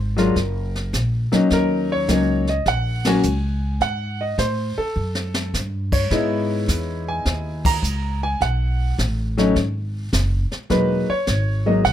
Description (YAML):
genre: jazz piano trio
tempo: 104 BPM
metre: 4/4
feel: swing 68% on 8ths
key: unclear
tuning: A4 = 440 Hz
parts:
  - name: upright bass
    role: bass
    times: 0.0-11.9 s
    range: E1 to A2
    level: -23 LUFS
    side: equal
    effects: none
  - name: warm concert grand piano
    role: melody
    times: 0.2-11.9 s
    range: F#3 to A#5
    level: -20 LUFS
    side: left 1 dB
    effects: none
  - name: jazz brush drum kit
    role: drums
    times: 0.2-11.9 s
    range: brushed snare drum, crash cymbal, hi-hat, kick drum, ride cymbal, snare drum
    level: -25 LUFS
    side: left 1 dB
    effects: none
room: little or no reverb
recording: close, detailed microphones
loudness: -19 LUFS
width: side -10 dB against mid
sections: 0.0-11.9 A section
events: band accent 3.0, 7.5; drum fill 5.0-5.5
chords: 0.0 A#7(#5, no3); 1.5 D#m7; 3.8 F#madd9; 6.1 C#m9; 8.4 B7(no3); 10.7 Emaj9#11